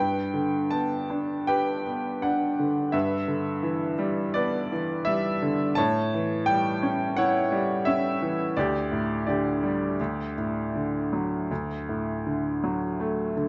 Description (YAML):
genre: classical, lyrical solo piano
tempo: 84 BPM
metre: 4/4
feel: uneven beats, rubato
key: unclear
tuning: A4 = 440 Hz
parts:
  - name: bright baby grand piano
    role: solo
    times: 0.0-13.5 s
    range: D2 to A5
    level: -27 LUFS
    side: equal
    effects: none
room: moderate recital hall reverb, RT60 1.6 s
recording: dark, warm production, nothing above 7.8 kHz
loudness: -27 LUFS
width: mono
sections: 0.0-13.5 A section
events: none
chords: 0.0 Gadd9; 2.9 Em7/G; 5.8 A7; 8.6 Dsus4; 10.0 D